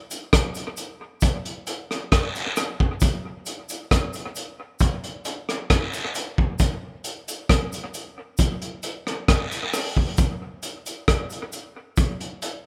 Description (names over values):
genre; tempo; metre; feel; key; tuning
reggae; 67 BPM; 4/4; straight; none; none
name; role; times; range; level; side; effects
crunchy breakbeat drum kit; drums; 0.1-12.6 s; hi-hat, kick drum, rim click; -24 LUFS; equal; none
cabasa and guiro; percussion; 0.1-12.6 s; none; -36 LUFS; equal; none
room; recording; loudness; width
small room ambience; rough home demo mix; -25 LUFS; mono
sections
0.0-10.2 A section; 10.2-12.7 B section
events
none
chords
none